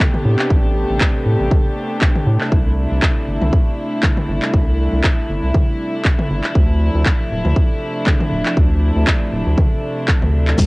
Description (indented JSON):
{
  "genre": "afro house",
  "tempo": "119 BPM",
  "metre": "4/4",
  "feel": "swing 56% on 16ths",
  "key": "unclear",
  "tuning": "A4 = 440 Hz",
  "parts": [
    { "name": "warm studio string section", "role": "sustained chords", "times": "0.0-10.7 s", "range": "C3 to G4", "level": "-22 LUFS", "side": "equal", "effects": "sidechain pumping, cassette tape" },
    { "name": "electronic kick drum", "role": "drums", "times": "0.0-10.7 s", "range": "none", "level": "-15 LUFS", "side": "equal", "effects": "cassette tape" },
    { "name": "house drum kit", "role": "drums", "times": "0.0-10.7 s", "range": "crash cymbal, handclaps, toms", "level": "-21 LUFS", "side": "equal", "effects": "cassette tape" },
    { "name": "round analog bass", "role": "bass", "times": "0.2-10.7 s", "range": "D1 to A2", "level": "-17 LUFS", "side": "equal", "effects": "sidechain pumping" },
    { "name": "congas", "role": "percussion", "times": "10.6-10.7 s", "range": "none", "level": "-16 LUFS", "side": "left 2 dB", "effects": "none" },
    { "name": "shekere", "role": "percussion", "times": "10.6-10.7 s", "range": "none", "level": "-25 LUFS", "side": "left 1 dB", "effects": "none" }
  ],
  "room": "little or no reverb",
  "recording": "home recording on cassette",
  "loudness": "-14 LUFS",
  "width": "side -25 dB against mid",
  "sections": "0.0-10.7 A section",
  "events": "none",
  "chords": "0.0 Am11; 2.5 C69; 6.6 Dm9",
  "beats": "0.00 | 0.50 1.01 1.51 2.02 | 2.52 3.02 3.53 4.03 | 4.54 5.04 5.54 6.05 | 6.55 7.06 7.56 8.07 | 8.57 9.07 9.58 10.08 | 10.59"
}